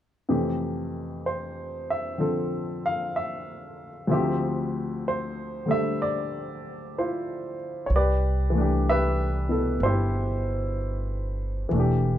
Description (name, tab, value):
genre	jazz ballad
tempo	63 BPM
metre	4/4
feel	swing 67% on 8ths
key	C major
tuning	A4 = 440 Hz
part	warm upright piano	accompaniment	0.3-12.2 s	D2 to F5	-26 LUFS	left 1 dB	none
part	upright bass	bass	7.9-12.2 s	E1 to C2	-25 LUFS	right 1 dB	none
room	light reverb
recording	close, detailed microphones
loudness	-24 LUFS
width	side -11 dB against mid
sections	0.3-7.9 A section; 7.9-12.2 B section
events	none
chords	0.3 Fmaj7; 4.1 Dm11; 7.9 Cmaj9